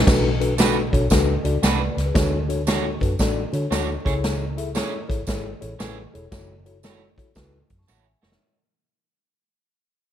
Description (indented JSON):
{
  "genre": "uptempo 1960s-style soul",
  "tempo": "115 BPM",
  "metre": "4/4",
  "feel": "swing 66% on 8ths",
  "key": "unclear",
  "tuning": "A4 = 440 Hz",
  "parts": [
    { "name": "vintage muted fingered electric bass", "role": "bass", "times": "0.0-8.4 s", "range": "E1 to D3", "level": "-26 LUFS", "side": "equal", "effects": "none" },
    { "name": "mellow tine electric piano", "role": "accompaniment", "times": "0.1-8.6 s", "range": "B2 to C#6", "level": "-26 LUFS", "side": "left 3 dB", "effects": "slow stereo tremolo" },
    { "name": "swinging big-band drum kit", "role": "drums", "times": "0.1-8.4 s", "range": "crash cymbal, hi-hat, kick drum, snare drum", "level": "-22 LUFS", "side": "equal", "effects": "none" },
    { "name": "tambourine", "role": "percussion", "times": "0.1-8.0 s", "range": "none", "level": "-35 LUFS", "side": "right 9 dB", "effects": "none" },
    { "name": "electric guitar at the edge of break-up", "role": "stabs", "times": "0.6-8.3 s", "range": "A3 to C#5", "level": "-29 LUFS", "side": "right 8 dB", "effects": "none" }
  ],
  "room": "light reverb",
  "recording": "vinyl crackle",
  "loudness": "-19 LUFS",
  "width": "side -10 dB against mid",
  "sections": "0.1-8.4 A section",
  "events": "fade-out 0.1-8.4; drum fill 7.9-8.4",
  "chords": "0.1 Bm7; 2.2 Dmaj7; 4.0 Amaj7; 6.3 F#m7"
}